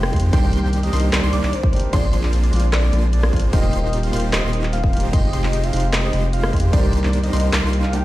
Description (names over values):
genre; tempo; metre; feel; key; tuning
future bass; 150 BPM; 4/4; half-time; C minor; A4 = 440 Hz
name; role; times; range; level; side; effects
warm velvety synth lead; melody; 0.0-8.0 s; C5 to G5; -28 LUFS; left 1 dB; chorus, tremolo, sidechain pumping, ping-pong delay
clear baby grand piano; accompaniment; 0.0-8.0 s; Eb3 to D5; -29 LUFS; right 2 dB; sidechain pumping, ping-pong delay
wide unison pluck; arpeggios; 0.0-8.0 s; C6 to D6; -34 LUFS; equal; sidechain pumping, ping-pong delay
supersaw chords; riff; 0.0-8.0 s; Ab3 to D5; -27 LUFS; right 1 dB; sidechain pumping
saturated sub bass; bass; 0.0-8.0 s; Eb1 to F2; -19 LUFS; equal; sidechain pumping
big-room dance drum kit; drums; 0.0-8.0 s; crash cymbal, handclaps, hi-hat, rim click; -26 LUFS; equal; none
electronic kick drum; drums; 0.1-6.8 s; none; -18 LUFS; equal; none
room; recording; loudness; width
digital ambience; played on a big sound system in a bare room, large studio reverb; -16 LUFS; side -16 dB against mid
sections
0.0-8.0 A section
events
none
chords
0.3 Cm9; 1.9 Bb9; 3.5 Eb69; 5.1 Fm9; 6.7 Cm9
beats
| 0.33 0.73 1.13 1.53 | 1.93 2.33 2.73 3.13 | 3.53 3.93 4.33 4.73 | 5.13 5.53 5.93 6.33 | 6.73 7.13 7.53 7.93